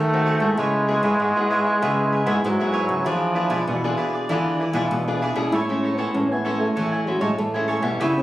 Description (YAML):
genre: samba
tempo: 97 BPM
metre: 4/4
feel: straight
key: A major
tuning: A4 = 440 Hz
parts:
  - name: clear trombone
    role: second line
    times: 0.0-5.2 s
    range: D3 to A3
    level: -22 LUFS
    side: right 1 dB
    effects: tape echo
  - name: nylon-string guitar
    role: accompaniment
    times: 0.0-8.2 s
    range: G#2 to A4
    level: -27 LUFS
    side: left 2 dB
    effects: none
  - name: nylon-string guitar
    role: bass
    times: 0.0-8.2 s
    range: G#2 to E3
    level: -26 LUFS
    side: equal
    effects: none
  - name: cavaquinho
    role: accompaniment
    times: 0.1-8.2 s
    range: E4 to G#5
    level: -27 LUFS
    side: right 2 dB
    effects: none
  - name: mellow trombone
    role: melody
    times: 5.5-8.2 s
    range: F#3 to E4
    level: -23 LUFS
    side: equal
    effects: plate reverb
room: light reverb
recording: recorded on a phone in the room, studio reverb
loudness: -19 LUFS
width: side -15 dB against mid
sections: 0.0-5.5 A section; 5.5-8.2 B section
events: none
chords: 0.0 G#7b9; 0.6 C#m7; 3.1 E7b9; 5.5 Amaj7